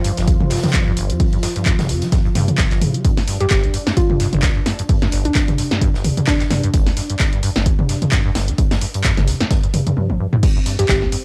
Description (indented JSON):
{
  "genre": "acid house",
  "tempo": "130 BPM",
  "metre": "4/4",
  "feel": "swing 56% on 16ths",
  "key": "unclear",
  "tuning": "A4 = 440 Hz",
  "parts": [
    { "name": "warm analog pad", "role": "sustained chords", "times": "0.0-11.2 s", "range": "F3 to F4", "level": "-30 LUFS", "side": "equal", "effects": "chorus, sidechain pumping, cassette tape" },
    { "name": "acid bass, saw", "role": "riff", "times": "0.0-11.2 s", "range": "G1 to G3", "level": "-24 LUFS", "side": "equal", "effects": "tube saturation, lush chorus, cassette tape" },
    { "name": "big rock drum kit", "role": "drums", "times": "0.0-11.2 s", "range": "hi-hat, snare drum", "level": "-36 LUFS", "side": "equal", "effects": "none" },
    { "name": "punchy analog drum machine", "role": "drums", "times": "0.0-11.2 s", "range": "crash cymbal, handclaps, hi-hat, snare drum, toms", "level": "-23 LUFS", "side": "equal", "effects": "none" },
    { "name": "electronic kick drum", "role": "drums", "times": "0.3-11.0 s", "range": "none", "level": "-20 LUFS", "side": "equal", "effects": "none" },
    { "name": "hollow square pluck", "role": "melody", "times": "3.4-6.7, 10.8-11.0 s", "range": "D4 to G4", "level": "-25 LUFS", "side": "equal", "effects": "chorus, cassette tape, analog delay" }
  ],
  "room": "light reverb",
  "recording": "home recording on cassette",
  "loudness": "-17 LUFS",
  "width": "mono",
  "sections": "0.0-10.4 A section",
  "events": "drum fill 10.0-10.4",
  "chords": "0.0 G5; 10.4 N.C."
}